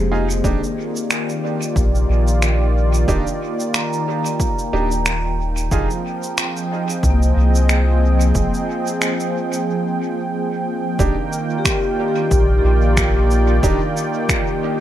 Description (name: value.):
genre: ambient dub.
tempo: 91 BPM.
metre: 4/4.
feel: swing 56% on 16ths.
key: unclear.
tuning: A4 = 440 Hz.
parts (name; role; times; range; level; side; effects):
warm analog pad; sustained chords; 0.0-14.8 s; Eb3 to G5; -22 LUFS; right 2 dB; chorus, tremolo.
vibraphone with medium hard mallets; arpeggios; 0.0-14.8 s; Bb3 to Bb5; -25 LUFS; left 3 dB; dub echo.
soft dub sub bass; bass; 0.0-13.8 s; Eb1 to C2; -16 LUFS; equal; none.
bright upright piano; stabs; 0.1-5.9, 11.0-13.8 s; D4 to Ab4; -28 LUFS; right 4 dB; dub echo.
electronic shaker and finger snaps; drums; 0.3-14.4 s; none; -24 LUFS; equal; dub echo.
electronic kick drum; drums; 0.4-14.4 s; none; -22 LUFS; equal; overdrive.
room: light reverb.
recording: echo-heavy mix.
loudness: -16 LUFS.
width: side -12 dB against mid.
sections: 0.0-11.0 A section; 11.0-14.8 B section.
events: break 9.7-11.0.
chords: 0.4 Ebmaj7; 5.7 Fm7; 11.0 Ebmaj7.